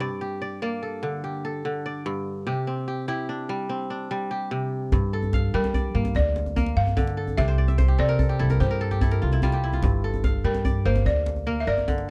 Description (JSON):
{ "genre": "west african traditional, West African string and xylophone music", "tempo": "98 BPM (dotted quarters)", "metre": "12/8", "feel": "straight", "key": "G dorian", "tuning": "A4 = 440 Hz", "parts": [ { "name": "kora", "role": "arpeggios", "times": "0.0-12.1 s", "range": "G2 to F5", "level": "-31 LUFS", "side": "equal", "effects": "none" }, { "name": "upright bass", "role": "bass", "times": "4.9-12.1 s", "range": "G1 to G3", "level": "-26 LUFS", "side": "equal", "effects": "none" }, { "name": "djembe", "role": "percussion", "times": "4.9-12.1 s", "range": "none", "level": "-29 LUFS", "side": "equal", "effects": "none" }, { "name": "balafon", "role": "melody", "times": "5.5-12.1 s", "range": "Bb4 to F5", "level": "-30 LUFS", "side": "equal", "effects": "none" } ], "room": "little or no reverb", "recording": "cassette tape", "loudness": "-25 LUFS", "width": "mono", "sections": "0.0-4.9 A section; 4.9-12.1 B section", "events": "kora fill 7.4-9.8", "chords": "0.0 Gm; 2.5 C; 4.9 Gm; 7.4 C; 9.8 Gm" }